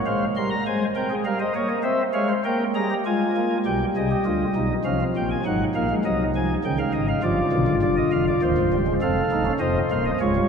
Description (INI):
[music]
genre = classical, baroque-style 4-part fugue for pipe organ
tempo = 101 BPM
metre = 3/4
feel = straight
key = unclear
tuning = A4 = 440 Hz
[part]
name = pipe organ, flutes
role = solo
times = 0.1-10.5 s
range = C1 to C6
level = -20 LUFS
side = equal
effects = none
[sound]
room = wet cathedral reverb, RT60 4.6 s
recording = none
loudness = -20 LUFS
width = side -6 dB against mid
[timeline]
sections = 0.0-3.7 A section; 3.7-10.5 B section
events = none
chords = 0.1 Fm; 1.3 Gm7b5; 1.8 C7; 3.1 Fm/Ab; 3.7 G7/B; 4.9 C5; 5.5 Ab7; 6.6 Db; 7.2 G7; 8.4 Cm; 9.0 F7